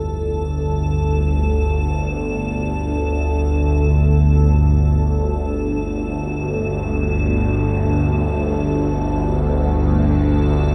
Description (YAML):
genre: dark ambient drone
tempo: free time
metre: none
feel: none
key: unclear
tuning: A4 = 438 Hz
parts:
  - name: gamelan-type bossed gongs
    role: arpeggios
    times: 0.0-5.2 s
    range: none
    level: barely audible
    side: none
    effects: none
  - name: bowed-like drone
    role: drone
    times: 0.0-10.7 s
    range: G1 to D2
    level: -19 LUFS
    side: equal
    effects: built-in reverb, phaser
  - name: icy glass pad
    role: texture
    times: 0.0-10.7 s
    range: A4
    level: -29 LUFS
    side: equal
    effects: chorus, built-in reverb
room: wet huge ambient reverb, RT60 8.6 s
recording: dreamy mix soaked in reverb, cassette tape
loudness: -19 LUFS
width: mono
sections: 0.0-10.7 A section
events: none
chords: 0.0 G5